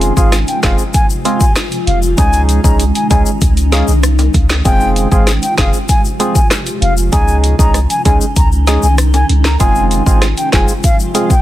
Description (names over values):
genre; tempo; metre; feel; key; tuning
dancehall; 97 BPM; 4/4; straight; F minor; A4 = 440 Hz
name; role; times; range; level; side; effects
percussive organ stab; accompaniment; 0.0-11.3 s; Ab3 to Ab4; -18 LUFS; right 2 dB; chorus
granular cloud pad; sustained chords; 0.0-11.4 s; C3 to F4; -21 LUFS; equal; built-in reverb, sidechain pumping
punchy sub bass; bass; 0.0-10.7 s; F1 to Db2; -13 LUFS; equal; none
afro-pop drum kit; drums; 0.0-11.4 s; handclaps, hi-hat, kick drum, rim click, snare drum; -13 LUFS; equal; none
tube shaker and timbales; percussion; 0.0-11.4 s; none; -25 LUFS; left 7 dB; none
baroque flute; melody; 0.2-11.4 s; F5 to Bb5; -19 LUFS; left 1 dB; tape echo
room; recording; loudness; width
little or no reverb; dense, heavily limited modern master; -10 LUFS; side -14 dB against mid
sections
0.0-11.4 A section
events
none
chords
0.0 Fm; 2.2 Dbsus2; 4.7 Fm; 7.1 Dbsus2; 9.6 Fm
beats
0.33 0.94 1.56 | 2.18 2.80 3.42 4.04 | 4.65 5.27 5.89 6.51 | 7.13 7.75 8.37 8.98 | 9.60 10.22 10.84